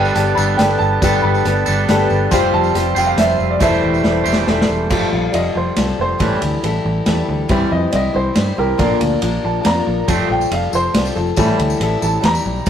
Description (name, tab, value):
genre	folk rock and heartland rock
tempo	139 BPM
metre	3/4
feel	straight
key	C major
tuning	A4 = 440 Hz
part	warm grand piano	melody	0.0-12.7 s	G4 to B5	-20 LUFS	right 2 dB	none
part	picked old ladder-braced acoustic guitar	accompaniment	0.0-12.7 s	A2 to C5	-19 LUFS	left 4 dB	none
part	warm grand piano	accompaniment	0.0-4.9 s	E4 to C6	-24 LUFS	left 4 dB	none
part	twangy electric guitar	riff	0.0-12.7 s	E2 to C5	-22 LUFS	right 6 dB	none
part	fingered electric bass	bass	0.0-12.7 s	E1 to G2	-20 LUFS	equal	none
part	tambourine	percussion	0.0-4.7, 10.1-12.7 s	none	-33 LUFS	left 4 dB	none
part	vintage drum kit	drums	0.2-12.7 s	crash cymbal, hi-hat, kick drum, ride cymbal, snare drum	-21 LUFS	equal	none
room	moderate stone room reverb, RT60 1.1 s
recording	rough rehearsal-room recording, tube saturation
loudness	-14 LUFS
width	side -9 dB against mid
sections	0.0-4.9 A section; 4.9-12.7 B section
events	drum fill 4.0-4.9; grand piano fill 4.0-4.9; grand piano solo 4.9-12.7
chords	0.0 Gadd9; 2.3 Fsus2; 3.6 C6/E; 4.9 Fadd9; 6.2 Am7; 7.5 C; 8.8 Bb; 10.1 Fadd9; 11.4 Am7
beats	0.15 0.59 | 1.02 1.45 1.88 | 2.31 2.75 3.18 | 3.61 4.04 4.47 | 4.91 5.34 5.77 | 6.20 6.63 7.07 | 7.50 7.93 8.36 | 8.79 9.22 9.66 | 10.09 10.52 10.95 | 11.38 11.81 12.24 | 12.67